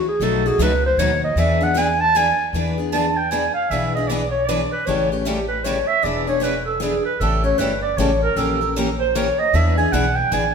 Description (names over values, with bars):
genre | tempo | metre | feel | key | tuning
acoustic string swing (jazz manouche) | 154 BPM | 3/4 | swing 62% on 8ths | E mixolydian | A4 = 440 Hz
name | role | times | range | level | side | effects
breathy clarinet | melody | 0.0-2.5 s | G#4 to A5 | -18 LUFS | right 1 dB | none
picked steel-string acoustic guitar | accompaniment | 0.2-10.4 s | B2 to A#4 | -25 LUFS | left 3 dB | none
picked steel-string acoustic guitar | accompaniment | 0.2-10.4 s | B2 to B4 | -27 LUFS | right 1 dB | none
upright bass | bass | 0.2-10.5 s | E1 to E2 | -23 LUFS | equal | none
breathy clarinet | second line | 2.9-10.5 s | E4 to A5 | -20 LUFS | right 2 dB | none
room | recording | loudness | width
wet stone room reverb, RT60 1.4 s | band playing live in one room | -17 LUFS | side -6 dB against mid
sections
0.0-2.5 A section; 2.5-10.5 A section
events
clarinet solo 0.0-2.5, 2.5-10.5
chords
0.2 B7; 1.4 E7; 4.9 A7; 6.0 E7; 7.2 A7; 8.4 A#dim7; 9.5 E7